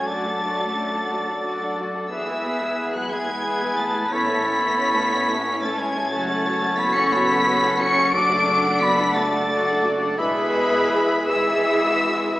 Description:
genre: cinematic, emotional film score for orchestra.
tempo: 59 BPM (dotted quarters).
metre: 6/8.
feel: rubato.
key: unclear.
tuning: A4 = 438 Hz.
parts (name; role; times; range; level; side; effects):
rich studio violin section; melody; 0.0-12.4 s; B5 to D7; -27 LUFS; left 1 dB; none.
clear clarinet; second line; 0.0-12.4 s; G#4 to A4; -29 LUFS; equal; none.
concert flute; second line; 0.0-12.4 s; B4 to D6; -24 LUFS; equal; none.
rich studio violin section; second line; 0.0-12.4 s; F#4 to G#5; -30 LUFS; left 1 dB; none.
warm oboe; second line; 0.0-12.4 s; B4 to E5; -26 LUFS; equal; none.
rich studio viola section; accompaniment; 0.0-12.4 s; F#3 to G#4; -29 LUFS; right 1 dB; none.
mellow French horn section; sustained chords; 0.0-12.4 s; E3 to E4; -30 LUFS; left 1 dB; none.
rich studio cello section; bass; 0.0-12.4 s; B2 to D4; -30 LUFS; right 1 dB; none.
warm studio double bass section; bass; 0.0-12.4 s; E1 to F#2; -35 LUFS; right 1 dB; none.
timpani; percussion; 8.1-9.1 s; F#2; -41 LUFS; equal; none.
room: wet recital hall reverb, RT60 1.5 s.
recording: recorded in a church or concert hall, small speaker sound.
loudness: -19 LUFS.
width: side -16 dB against mid.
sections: 0.0-12.4 A section.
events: none.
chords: 0.1 D/F#; 2.1 E; 4.1 A; 6.1 F#m; 8.1 D/F#; 10.2 E.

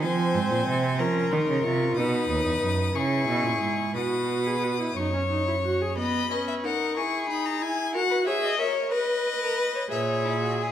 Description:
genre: classical, baroque-style fugue for string quartet.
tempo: 61 BPM (dotted quarters).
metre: 6/8.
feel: straight.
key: B major.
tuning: A4 = 437 Hz.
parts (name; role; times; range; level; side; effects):
clear violin; melody; 0.0-10.7 s; C#5 to D#6; -30 LUFS; left 7 dB; none.
rich violin; second line; 0.0-10.7 s; E4 to E5; -29 LUFS; left 3 dB; none.
rich viola; accompaniment; 0.0-10.7 s; B3 to B4; -29 LUFS; right 2 dB; none.
rich cello; bass; 0.0-5.9, 9.9-10.7 s; D#2 to E#3; -27 LUFS; right 4 dB; none.
room: wet recital hall reverb, RT60 1.6 s.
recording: none.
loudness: -23 LUFS.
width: side -10 dB against mid.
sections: 0.0-6.0 A section; 6.0-9.9 B section.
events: none.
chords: 0.0 Fm; 1.0 A#m; 2.0 B; 3.0 C#m7; 4.0 F#sus4/B; 5.0 F#5; 6.0 B; 7.0 C#m; 7.9 F#7; 8.9 B; 9.9 A#m7b5.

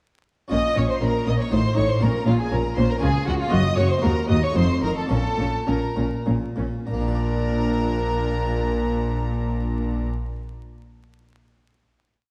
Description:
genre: classical, baroque-style concerto movement with solo episodes.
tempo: 97-120 BPM.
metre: 3/4.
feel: straight.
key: unclear.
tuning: A4 = 441 Hz.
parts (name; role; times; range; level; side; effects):
rich chamber violin section; melody; 0.5-10.1 s; F5 to Eb6; -36 LUFS; equal; none.
rich violin; melody; 0.5-10.1 s; F4 to Eb5; -33 LUFS; equal; none.
rich chamber violin section; second line; 0.5-10.1 s; F4 to Eb5; -31 LUFS; equal; none.
harpsichord; accompaniment; 0.5-10.3 s; Eb2 to D5; -30 LUFS; equal; none.
rich chamber viola section; accompaniment; 0.5-10.1 s; Db4 to Gb4; -33 LUFS; equal; none.
clear chamber double bass section; bass; 0.5-10.1 s; F1 to Eb2; -28 LUFS; equal; none.
rich chamber cello section; bass; 0.5-10.1 s; Eb2 to Db3; -28 LUFS; equal; none.
room: moderate concert hall reverb, RT60 2.1 s.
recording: dark, warm production, vinyl crackle.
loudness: -22 LUFS.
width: mono.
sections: 0.5-6.9 ritornello; 6.9-10.5 final chord.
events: slowing down 2.8-6.9.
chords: 0.5 Bbm; 1.5 F7/A; 2.0 Bbm; 3.0 Db; 3.5 Gb; 4.0 Ebm; 4.6 F7; 5.1 Bbm; 6.9 Bb.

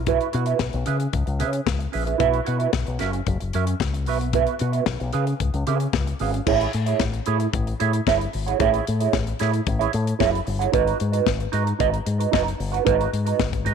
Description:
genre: disco.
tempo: 112 BPM.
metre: 4/4.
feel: straight.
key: unclear.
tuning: A4 = 439 Hz.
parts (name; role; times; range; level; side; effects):
fingered electric bass with an envelope filter; bass; 0.0-13.7 s; F#1 to C#3; -24 LUFS; left 2 dB; none.
mellow electric guitar; accompaniment; 0.1-13.7 s; B3 to F#5; -24 LUFS; right 11 dB; wah.
tight funk drum kit; drums; 0.1-13.7 s; crash cymbal, hi-hat, kick drum, snare drum; -27 LUFS; left 8 dB; none.
room: light reverb, studio ambience.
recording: 1960s-style stereo with parts hard left and right.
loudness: -20 LUFS.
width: side -6 dB against mid.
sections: 0.0-6.5 A section; 6.5-13.7 B section.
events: none.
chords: 0.0 Bsus4; 0.9 C#m7; 2.2 Bsus4; 3.0 F#7; 4.1 Bsus4; 5.1 C#7; 6.5 Amaj7; 10.7 G#m7.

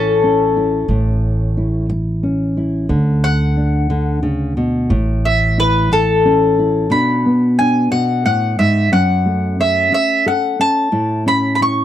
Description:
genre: acoustic folk duo or small band.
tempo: 60 BPM (dotted quarters).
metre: 6/8.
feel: straight.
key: A major.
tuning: A4 = 439 Hz.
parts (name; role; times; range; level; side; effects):
mandolin; melody; 0.0-11.8 s; C#4 to C#6; -16 LUFS; left 2 dB; none.
nylon-string guitar; accompaniment; 0.0-11.8 s; F#2 to A4; -17 LUFS; equal; none.
upright bass; bass; 0.0-6.9 s; A1 to D2; -18 LUFS; right 1 dB; none.
room: little or no reverb.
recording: dry, close 1970s-style studio recording.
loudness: -13 LUFS.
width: side -11 dB against mid.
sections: 0.0-6.9 A section; 6.9-11.8 B section.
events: mandolin solo 0.0-6.9.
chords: 0.0 A; 2.9 D; 4.9 A; 6.9 Bm; 8.9 F#m; 10.9 A.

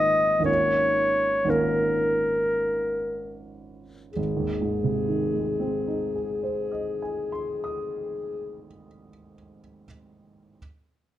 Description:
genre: classical, impressionist duo for clarinet and grand piano.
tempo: 40-62 BPM.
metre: 3/4.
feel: rubato.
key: Ab major.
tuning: A4 = 440 Hz.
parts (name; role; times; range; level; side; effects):
warm clarinet; melody; 0.0-8.6 s; Ab4 to Eb5; -24 LUFS; left 2 dB; none.
warm grand piano; accompaniment; 0.0-10.6 s; Ab1 to Eb6; -29 LUFS; right 3 dB; none.
room: light reverb.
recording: dark, warm production.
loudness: -23 LUFS.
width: side -13 dB against mid.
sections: 0.0-4.2 A section; 4.2-8.4 B section.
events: slowing down 0.0-4.2.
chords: 0.5 Eb9sus4/Ab; 4.2 Ab.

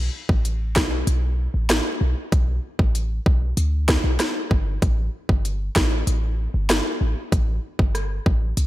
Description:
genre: dancehall.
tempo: 96 BPM.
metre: 4/4.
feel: straight.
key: B phrygian.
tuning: A4 = 440 Hz.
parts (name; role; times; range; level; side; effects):
clean 808-style bass; bass; 0.0-8.7 s; G1 to D2; -22 LUFS; equal; none.
island pop drum kit; drums; 0.3-8.7 s; hi-hat, kick drum, rim click, snare drum; -21 LUFS; equal; overdrive.
room: light reverb.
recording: none.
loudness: -19 LUFS.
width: side -16 dB against mid.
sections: 0.0-8.7 A section.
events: none.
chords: none.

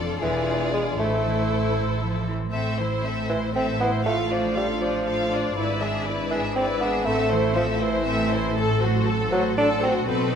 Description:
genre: cinematic, playful, whimsical film cue.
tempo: 79 BPM (dotted quarters).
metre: 6/8.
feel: straight.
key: A minor.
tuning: A4 = 437 Hz.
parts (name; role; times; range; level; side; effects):
rich chamber violin section; melody; 0.0-10.4 s; A4 to F5; -30 LUFS; left 2 dB; none.
rich chamber violin section; second line; 0.0-10.3 s; F4 to C5; -31 LUFS; left 4 dB; none.
clear studio viola section; accompaniment; 0.0-10.4 s; C4 to A4; -30 LUFS; equal; none.
concert harp; arpeggios; 0.0-10.4 s; E2 to E5; -32 LUFS; left 7 dB; none.
rich chamber cello section; bass; 0.0-10.4 s; E2 to F3; -30 LUFS; right 4 dB; none.
rich studio double bass section; bass; 0.0-10.4 s; E1 to B1; -30 LUFS; right 3 dB; none.
clear bassoon; accompaniment; 0.2-9.9 s; E3 to D4; -25 LUFS; right 1 dB; none.
room: moderate scoring stage reverb, RT60 1.7 s.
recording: none.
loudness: -21 LUFS.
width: side -7 dB against mid.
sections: 0.0-2.5 A section; 2.5-10.4 A section.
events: none.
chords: 0.2 E7b9; 1.0 Am; 4.0 Dm/A; 5.6 E7/G#; 7.1 Am; 8.6 F#dim/A.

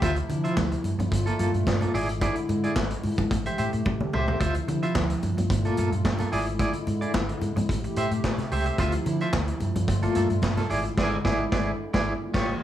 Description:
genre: disco.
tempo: 110 BPM.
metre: 4/4.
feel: straight.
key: D minor.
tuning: A4 = 441 Hz.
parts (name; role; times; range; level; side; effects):
clean electric guitar; accompaniment; 0.0-12.5 s; Bb3 to E5; -29 LUFS; right 2 dB; tremolo.
hollow soft pad; sustained chords; 0.0-12.6 s; Bb2 to G4; -30 LUFS; equal; chorus.
vintage muted fingered electric bass; bass; 0.0-12.5 s; G1 to D3; -28 LUFS; equal; none.
vintage drum kit; drums; 0.0-12.5 s; crash cymbal, handclaps, hi-hat, kick drum, snare drum, toms; -29 LUFS; equal; none.
congas; percussion; 0.0-10.7 s; none; -35 LUFS; left 7 dB; none.
room: light reverb, studio reverb.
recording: small room ambience.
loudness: -23 LUFS.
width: side -12 dB against mid.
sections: 0.0-12.6 A section.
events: drum fill 3.9-4.4; band accent 11.0-12.6.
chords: 0.0 Dm9; 0.8 Gm9; 1.9 E7/G#; 3.3 Am7; 4.4 Dm9; 5.2 Gm9; 6.3 E7/G#; 7.7 Am7; 8.8 Dm9; 9.6 Gm9; 10.7 E7/G#; 12.1 A7b9b13.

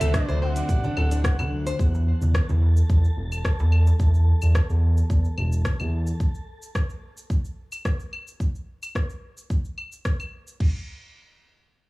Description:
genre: organic downtempo.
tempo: 109 BPM.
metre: 4/4.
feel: straight.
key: unclear.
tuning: A4 = 440 Hz.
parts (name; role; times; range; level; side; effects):
bright reedy bansuri; melody; 0.0-1.5 s; D5 to G5; -34 LUFS; right 4 dB; tape echo.
clear symphonic string section; sustained chords; 0.0-1.8 s; D3 to D5; -39 LUFS; right 1 dB; sidechain pumping.
nylon-string guitar; arpeggios; 0.0-1.8 s; D4 to D5; -32 LUFS; left 2 dB; tape echo.
smooth gliding synth bass; bass; 0.0-6.1 s; D1 to E2; -20 LUFS; equal; sidechain pumping.
organic electronic drum kit; drums; 0.0-10.6 s; claves, hi-hat, rim click, shaker; -32 LUFS; left 1 dB; none.
darbuka; percussion; 0.0-4.0 s; none; -34 LUFS; right 1 dB; none.
wind-like tuned noise texture; texture; 0.0-6.2 s; F#3 to F#6; -42 LUFS; left 2 dB; built-in reverb.
deep house drum kit; drums; 0.1-10.7 s; crash cymbal, kick drum, toms; -23 LUFS; equal; none.
room: studio reverb.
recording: dry, gritty hardware recording, small room ambience.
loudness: -21 LUFS.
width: side -21 dB against mid.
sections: 0.0-1.8 A section; 1.8-10.6 B section; 10.6-11.9 C section.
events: none.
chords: 0.0 D7; 1.8 Esus4; 6.2 N.C..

